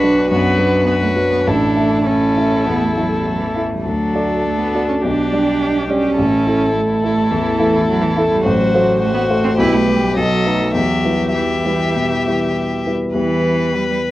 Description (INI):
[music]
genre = quick classical-period movement for piano quartet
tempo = 98-107 BPM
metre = 4/4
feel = rubato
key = E minor from 8.4 s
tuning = A4 = 440 Hz
[part]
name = rich violin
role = melody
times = 0.0-14.1 s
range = G4 to E5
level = -21 LUFS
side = left 2 dB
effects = none
[part]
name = clear violin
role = second line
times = 0.0-12.9 s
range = D4 to A4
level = -25 LUFS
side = equal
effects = none
[part]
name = rich cello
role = second line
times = 0.0-14.0 s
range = E3 to E4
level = -20 LUFS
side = right 3 dB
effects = none
[part]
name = warm grand piano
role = accompaniment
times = 0.0-14.1 s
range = A1 to E5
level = -17 LUFS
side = left 1 dB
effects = none
[sound]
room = moderate studio reverb, RT60 0.5 s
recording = worn, warbling old tape, cassette tape, warbly pitch drift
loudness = -14 LUFS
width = side -16 dB against mid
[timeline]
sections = 0.0-13.2 A section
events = none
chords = 0.0 Bm; 1.5 A; 3.9 D; 5.0 G/B; 6.2 A; 8.4 F#dim/A; 9.6 Emadd11/B; 10.2 B7; 10.7 Em